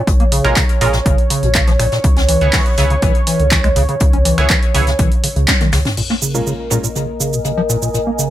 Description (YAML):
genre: acid house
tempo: 122 BPM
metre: 4/4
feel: straight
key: Bb minor pentatonic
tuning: A4 = 440 Hz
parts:
  - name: dark analog pad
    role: sustained chords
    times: 0.0-8.3 s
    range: Bb4 to Db5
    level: -22 LUFS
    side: right 1 dB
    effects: chorus, sidechain pumping
  - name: acid bass, square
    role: riff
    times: 0.1-8.3 s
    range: Bb2 to Db4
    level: -19 LUFS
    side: equal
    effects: tube saturation, lush chorus, sidechain pumping
  - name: round analog bass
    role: bass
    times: 0.1-8.3 s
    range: Ab1 to Db2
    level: -19 LUFS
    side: equal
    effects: sidechain pumping
  - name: electronic kick drum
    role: drums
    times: 0.1-5.6 s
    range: none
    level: -15 LUFS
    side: equal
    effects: overdrive
  - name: jazz brush drum kit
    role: drums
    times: 0.1-8.3 s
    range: hi-hat, snare drum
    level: -27 LUFS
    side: left 3 dB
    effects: high-pass filter on hats, low-pass filter on hats, high-pass filter on snare, low-pass filter on snare, high-pass filter on room, low-pass filter on room
  - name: punchy analog drum machine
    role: drums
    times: 0.1-8.3 s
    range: crash cymbal, finger snaps, handclaps, hi-hat, shaker, toms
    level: -19 LUFS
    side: right 1 dB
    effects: overdrive
  - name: band-passed chord stab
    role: stabs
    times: 0.4-6.9 s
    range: Ab3 to Db5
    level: -21 LUFS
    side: right 2 dB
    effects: chorus, ping-pong delay
  - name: ethereal airy pad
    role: texture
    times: 6.6-8.3 s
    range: Bb4 to Ab5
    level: -24 LUFS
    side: left 2 dB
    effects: ensemble chorus, built-in reverb, sidechain pumping
room: light reverb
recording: none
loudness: -12 LUFS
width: side -13 dB against mid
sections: 0.0-6.0 A section; 6.0-8.3 B section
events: drum fill 5.5-6.0; band accent 5.5; filter sweep on synth stab 6.0-8.3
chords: 0.0 Bbm7; 2.0 Dbm7; 6.0 Bbm7